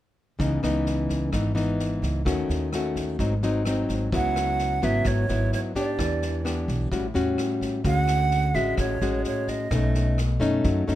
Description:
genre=bossa nova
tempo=129 BPM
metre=4/4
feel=straight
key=C# minor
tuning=A4 = 438 Hz
part: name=nylon-string guitar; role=accompaniment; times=0.4-11.0 s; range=G#2 to G4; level=-25 LUFS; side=left 2 dB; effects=none
part: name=upright bass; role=bass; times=0.4-11.0 s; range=G#1 to F#2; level=-26 LUFS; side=right 1 dB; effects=none
part: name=swinging big-band drum kit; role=drums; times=0.4-10.9 s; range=kick drum, rim click, snare drum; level=-33 LUFS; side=equal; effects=none
part: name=breathy jazz flute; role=melody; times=4.1-10.2 s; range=C#5 to F#5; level=-28 LUFS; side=right 4 dB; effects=plate reverb
room=light reverb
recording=none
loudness=-22 LUFS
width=side -13 dB against mid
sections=0.4-4.1 A section; 4.1-11.0 B section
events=none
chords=0.4 C#m9; 2.3 D#m7b5; 3.2 G#7; 4.1 C#m7; 6.0 Em7; 6.9 A6; 7.9 Dmaj7#11; 9.7 B9

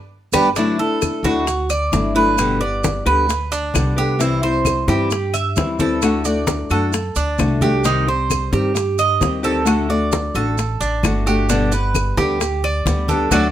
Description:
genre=latin, Cuban son and guajira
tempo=132 BPM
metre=4/4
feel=straight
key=G major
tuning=A4 = 440 Hz
part: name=nylon-string guitar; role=accompaniment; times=0.3-13.5 s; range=B2 to G4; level=-20 LUFS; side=left 3 dB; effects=none
part: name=Cuban tres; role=arpeggios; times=0.3-13.5 s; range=D4 to E5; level=-20 LUFS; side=right 4 dB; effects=none
part: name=upright bass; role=bass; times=0.3-13.5 s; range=G1 to G2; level=-22 LUFS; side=equal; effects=none
part: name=bongos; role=percussion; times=0.3-13.4 s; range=none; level=-26 LUFS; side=left 7 dB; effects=none
part: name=claves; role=percussion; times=0.3-13.4 s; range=none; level=-29 LUFS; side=left 10 dB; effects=none
part: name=congas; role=percussion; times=0.3-13.4 s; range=none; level=-24 LUFS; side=left 1 dB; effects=none
part: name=maracas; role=percussion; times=0.3-13.4 s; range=none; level=-30 LUFS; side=right 9 dB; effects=none
room=moderate studio reverb, RT60 0.7 s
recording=none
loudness=-16 LUFS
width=side -11 dB against mid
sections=0.6-13.5 A section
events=band accent 0.0-0.6, 13.3; drum fill 0.3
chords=0.0 G; 0.6 Dadd9; 2.4 G; 4.2 C; 6.0 D; 7.8 Cm; 9.7 D; 11.5 G

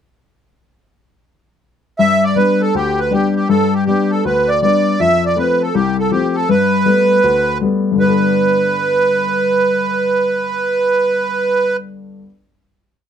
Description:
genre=celtic folk, Celtic hornpipe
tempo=160 BPM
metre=4/4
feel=swing 65% on 8ths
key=G mixolydian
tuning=A4 = 441 Hz
part: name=accordion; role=melody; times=2.0-11.8 s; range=G4 to E5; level=-14 LUFS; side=right 3 dB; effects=light tremolo tuning
part: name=warm upright piano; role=accompaniment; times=2.0-12.3 s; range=C2 to A4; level=-17 LUFS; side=left 5 dB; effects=none
room=moderate studio ambience, RT60 0.5 s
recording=close, detailed microphones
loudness=-13 LUFS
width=side -8 dB against mid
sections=2.0-8.0 A section; 8.0-11.0 final chord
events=none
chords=2.0 G; 5.0 F; 6.5 Gadd9

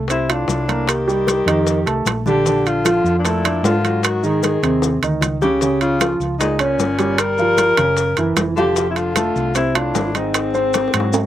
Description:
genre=Afro-Cuban jazz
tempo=152 BPM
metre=4/4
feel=straight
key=unclear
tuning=A4 = 440 Hz
part: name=warm concert grand piano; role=accompaniment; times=0.0-11.3 s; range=C3 to F5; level=-20 LUFS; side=right 3 dB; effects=slapback echo
part: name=hollow-body short-scale fingered electric bass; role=bass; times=0.0-11.3 s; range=F1 to Ab2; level=-23 LUFS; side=equal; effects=none
part: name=breathy alto saxophone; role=melody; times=0.1-11.3 s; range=C4 to Bb4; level=-20 LUFS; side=left 2 dB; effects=none
part: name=mellow baritone saxophone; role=second line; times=0.1-11.3 s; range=Ab2 to G3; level=-26 LUFS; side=left 6 dB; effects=slapback echo
part: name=bongos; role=percussion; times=0.1-11.1 s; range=none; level=-28 LUFS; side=left 8 dB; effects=slapback echo
part: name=congas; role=percussion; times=0.1-11.3 s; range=none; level=-28 LUFS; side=left 4 dB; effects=none
part: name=maracas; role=percussion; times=0.1-11.3 s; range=none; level=-30 LUFS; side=left 8 dB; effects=none
part: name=timbales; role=percussion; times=0.1-11.2 s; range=none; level=-21 LUFS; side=right 6 dB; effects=none
room=light reverb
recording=recorded outdoors, with no room sound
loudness=-15 LUFS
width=side -12 dB against mid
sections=0.0-11.3 A section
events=drum fill 4.8-5.6, 10.7-11.3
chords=0.0 F6; 0.9 Cm7; 1.7 F7; 2.5 Bbmaj7; 4.0 Ab7; 5.6 Db6; 7.2 Gm7; 8.0 Gb7; 8.8 F6; 10.3 Ab7

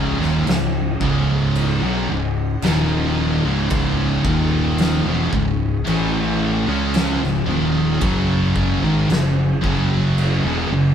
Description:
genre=stoner and doom metal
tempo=56 BPM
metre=4/4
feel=straight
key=C# minor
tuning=A4 = 440 Hz
part: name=string machine, full ensemble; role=sustained chords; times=0.0-10.9 s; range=F#3 to D#5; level=-31 LUFS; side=right 2 dB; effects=ensemble chorus
part: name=high-gain distorted guitar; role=riff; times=0.0-10.9 s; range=C#2 to C#4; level=-26 LUFS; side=equal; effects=distortion
part: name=thick fuzz guitar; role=riff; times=0.0-10.9 s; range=C#2 to C#4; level=-22 LUFS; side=left 4 dB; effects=distortion
part: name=thick fuzz guitar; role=riff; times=0.0-10.9 s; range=C#2 to C#4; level=-22 LUFS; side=right 5 dB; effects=distortion
part: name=fingered electric bass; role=bass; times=0.0-10.9 s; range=C#1 to C#2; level=-25 LUFS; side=equal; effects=overdrive
part: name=oversized low-tuned drum kit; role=drums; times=0.2-10.4 s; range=crash cymbal, kick drum, snare drum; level=-24 LUFS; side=equal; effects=none
room=light reverb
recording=band playing live in one room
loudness=-16 LUFS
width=side -8 dB against mid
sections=0.0-10.9 A section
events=none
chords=0.0 C#m; 8.0 F#5

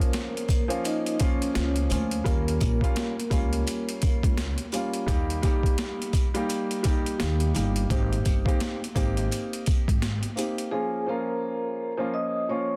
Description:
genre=hip hop, boom-bap hip-hop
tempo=85 BPM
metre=4/4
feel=swing 60% on 16ths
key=Bb dorian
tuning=A4 = 440 Hz
part: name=vibraphone with soft mallets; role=melody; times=0.0-4.5, 10.7-12.8 s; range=Bb3 to Eb6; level=-33 LUFS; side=equal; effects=high-pass filter, low-pass filter, tape echo
part: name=dark upright piano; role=accompaniment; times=0.0-12.8 s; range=F3 to G4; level=-32 LUFS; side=equal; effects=cassette tape, high-pass filter, low-pass filter
part: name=boom bap sampler-style drum kit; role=drums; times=0.0-10.7 s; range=hi-hat, kick drum, snare drum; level=-29 LUFS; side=equal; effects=overdrive
part: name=sleigh bells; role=percussion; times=0.1-10.6 s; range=none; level=-46 LUFS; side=equal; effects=none
part: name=upright bass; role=bass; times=1.6-10.2 s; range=G1 to Eb2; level=-30 LUFS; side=equal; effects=none
room=small room reverb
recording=dense, heavily limited modern master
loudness=-26 LUFS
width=mono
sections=0.0-10.7 A section; 10.7-12.8 B section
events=none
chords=0.0 Bbm; 2.3 Eb7 (rootless); 5.1 Eb; 7.9 Abmaj7; 10.7 Bbm

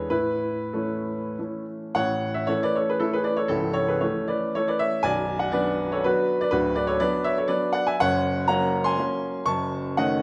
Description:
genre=classical, romantic triple-time dance for piano with dotted rhythms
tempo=88-131 BPM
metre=3/4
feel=rubato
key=A major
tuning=A4 = 440 Hz
part: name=warm baby grand piano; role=solo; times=0.0-10.2 s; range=B0 to Db6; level=-25 LUFS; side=equal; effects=none
room=moderate recital hall reverb, RT60 1.8 s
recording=none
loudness=-25 LUFS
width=mono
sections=0.0-2.0 A section; 2.0-10.2 B section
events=none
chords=0.1 A; 3.5 A/C#; 5.0 Bm; 6.5 Bm/D; 8.0 Gb; 9.5 Ebm7b5/Gb

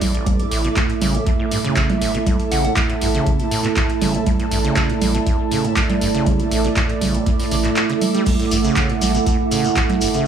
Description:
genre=acid house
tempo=120 BPM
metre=4/4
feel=straight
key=A mixolydian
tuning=A4 = 440 Hz
part: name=dark analog pad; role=sustained chords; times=0.0-10.3 s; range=A3 to F#5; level=-23 LUFS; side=right 6 dB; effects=lush chorus, sidechain pumping
part: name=acid bass, saw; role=riff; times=0.0-10.3 s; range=A1 to G3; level=-25 LUFS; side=right 2 dB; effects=tube saturation, sidechain pumping, digital delay
part: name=warm sub bass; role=bass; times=0.0-10.2 s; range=G1 to A2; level=-24 LUFS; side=right 1 dB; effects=sidechain pumping
part: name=electro analog drum machine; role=drums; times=0.0-10.2 s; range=congas, crash cymbal, handclaps, hi-hat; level=-22 LUFS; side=right 3 dB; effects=none
part: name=electronic kick drum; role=drums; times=0.0-9.9 s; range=none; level=-21 LUFS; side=equal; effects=none
part: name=ethereal airy pad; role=texture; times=0.0-10.3 s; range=E4 to D6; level=-25 LUFS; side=right 1 dB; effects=ensemble chorus, built-in reverb, sidechain pumping
part: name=soft synth bell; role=melody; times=2.5-2.7 s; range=F#5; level=-27 LUFS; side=left 3 dB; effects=chorus, phaser, digital delay
part: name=shekere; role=percussion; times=8.3-10.2 s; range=none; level=-28 LUFS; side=left 4 dB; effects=none
room=moderate small room reverb, RT60 0.5 s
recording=small room ambience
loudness=-16 LUFS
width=side -8 dB against mid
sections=0.0-10.3 A section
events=none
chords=0.0 A5

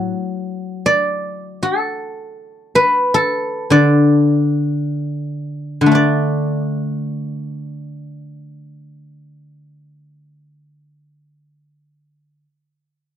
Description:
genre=chinese traditional, Chinese solo plucked strings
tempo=50-82 BPM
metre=2/4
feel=rubato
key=D gong mode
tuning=A4 = 440 Hz
part: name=guzheng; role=solo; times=0.0-12.4 s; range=D3 to A5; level=-16 LUFS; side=left 1 dB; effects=none
room=light reverb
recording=dry, close 1970s-style studio recording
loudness=-15 LUFS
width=side -10 dB against mid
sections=0.0-5.9 A section; 5.9-10.6 B section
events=slowing down 2.4-5.9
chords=none

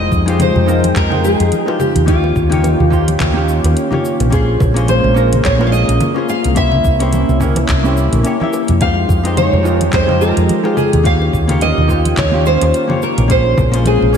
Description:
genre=sunset chillout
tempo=107 BPM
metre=4/4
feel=swing 57% on 16ths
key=F minor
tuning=A4 = 440 Hz
part: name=nylon-string guitar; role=melody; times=0.0-14.2 s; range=F4 to F5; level=-17 LUFS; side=equal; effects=wide subtle chorus, analog delay
part: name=hollow-body jazz guitar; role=accompaniment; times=0.0-14.2 s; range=Ab3 to G5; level=-20 LUFS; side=moving between left 5 dB and right 5 dB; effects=auto-pan, ping-pong delay
part: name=lush unison pad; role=sustained chords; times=0.0-14.2 s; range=Eb3 to G5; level=-20 LUFS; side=left 1 dB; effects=chorus, vintage 12-bit sampler grit
part: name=woody fretless electric bass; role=bass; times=0.0-14.2 s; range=Bb1 to F2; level=-15 LUFS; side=equal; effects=tube saturation
part: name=electronic kick drum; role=drums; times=0.1-13.7 s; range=none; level=-18 LUFS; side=equal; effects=none
part: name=smooth R&B drum kit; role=drums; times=0.1-14.2 s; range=congas, handclaps, hi-hat, shaker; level=-23 LUFS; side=left 2 dB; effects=none
part: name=bongos and congas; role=percussion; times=0.3-14.2 s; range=none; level=-24 LUFS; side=right 3 dB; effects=none
room=moderate lush hall reverb, RT60 2.4 s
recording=dreamy mix soaked in reverb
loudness=-11 LUFS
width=side -7 dB against mid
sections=0.0-14.2 A section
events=none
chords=0.0 Fm9; 2.1 Eb9; 4.3 Bbm9; 6.6 C7b9; 8.8 Fm9; 11.1 Eb9; 13.3 Bbm9

